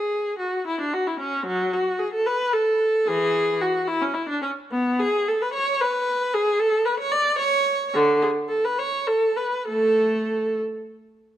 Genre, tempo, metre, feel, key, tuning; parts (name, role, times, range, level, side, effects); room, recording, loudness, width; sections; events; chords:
classical, baroque-style suite movement for unaccompanied viola; 63-77 BPM (dotted quarters); 6/8; rubato; A major; A4 = 440 Hz
clear viola; solo; 0.0-10.6 s; D3 to D5; -20 LUFS; equal
moderate stone room reverb, RT60 1.2 s; -20 LUFS; side -11 dB against mid
0.0-11.4 A section